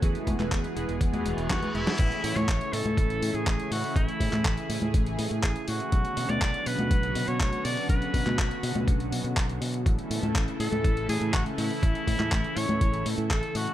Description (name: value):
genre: italo disco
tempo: 122 BPM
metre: 4/4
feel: straight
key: A major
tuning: A4 = 437 Hz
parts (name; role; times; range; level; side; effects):
- lush unison pad; sustained chords; 0.0-13.7 s; C#3 to C#5; -32 LUFS; equal; chorus
- chorused polysynth; stabs; 0.0-2.0 s; E3 to B4; -35 LUFS; right 4 dB; phaser, digital delay
- fingered electric bass; bass; 0.0-13.7 s; E1 to B2; -31 LUFS; equal; none
- dusty soul sampler-style drum kit; drums; 0.0-13.7 s; congas, crash cymbal, handclaps, hi-hat, snare drum; -32 LUFS; left 1 dB; none
- electronic kick drum; drums; 0.0-13.4 s; none; -26 LUFS; equal; none
- reverse cymbal; sound effects; 1.2-2.0 s; none; -38 LUFS; left 2 dB; none
- edgy alto saxophone; melody; 1.5-13.7 s; E4 to D5; -32 LUFS; equal; ping-pong delay
room: little or no reverb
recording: none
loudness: -24 LUFS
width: side -13 dB against mid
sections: 0.0-2.0 A section; 2.0-13.7 B section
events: reverse cymbal 1.2-2.0; drum fill 1.5-2.0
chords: 0.0 Eadd9; 2.0 A; 5.9 Bmadd9; 9.9 A